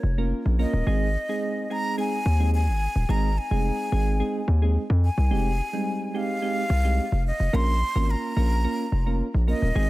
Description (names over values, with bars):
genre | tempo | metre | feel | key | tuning
afrobeats | 108 BPM | 4/4 | straight | unclear | A4 = 438 Hz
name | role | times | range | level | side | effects
breathy jazz flute | melody | 0.0-9.9 s | Db5 to C6 | -30 LUFS | left 1 dB | analog delay
hard-hitting 808-style bass | bass | 0.0-9.9 s | Eb1 to F2 | -22 LUFS | equal | none
soft electric-piano-like synth keys | accompaniment | 0.2-9.9 s | G3 to Bb4 | -29 LUFS | right 2 dB | chorus, tremolo
room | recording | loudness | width
little or no reverb | echo-heavy mix | -22 LUFS | side -18 dB against mid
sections
0.0-9.9 A section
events
none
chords
0.0 Bbm; 0.9 Ab; 5.3 Fm7; 7.5 Bbm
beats
0.31 | 0.87 1.42 1.98 2.53 | 3.09 3.65 4.20 4.76 | 5.31 5.87 6.42 6.98 | 7.53 8.09 8.64 9.20 | 9.76